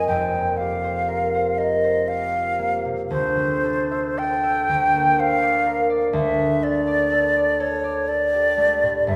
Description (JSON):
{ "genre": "classical, impressionist duo for flute and harp", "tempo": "40 BPM (dotted quarters)", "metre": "6/8", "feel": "uneven beats, rubato", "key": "unclear", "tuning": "A4 = 439 Hz", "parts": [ { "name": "mellow hollow silver concert flute", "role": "melody", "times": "0.0-9.2 s", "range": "C5 to G5", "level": "-22 LUFS", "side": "equal", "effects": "none" }, { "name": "concert harp", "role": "accompaniment", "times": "0.0-9.2 s", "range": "F1 to E5", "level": "-26 LUFS", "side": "equal", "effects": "none" } ], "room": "wet recital hall reverb, RT60 1.7 s", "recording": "recorded in a church or concert hall", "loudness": "-21 LUFS", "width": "mono", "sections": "0.0-9.2 A section", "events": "none", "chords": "0.1 C7sus4/F; 3.1 Dm9; 4.7 Bbadd9/D; 6.1 A7sus4/D" }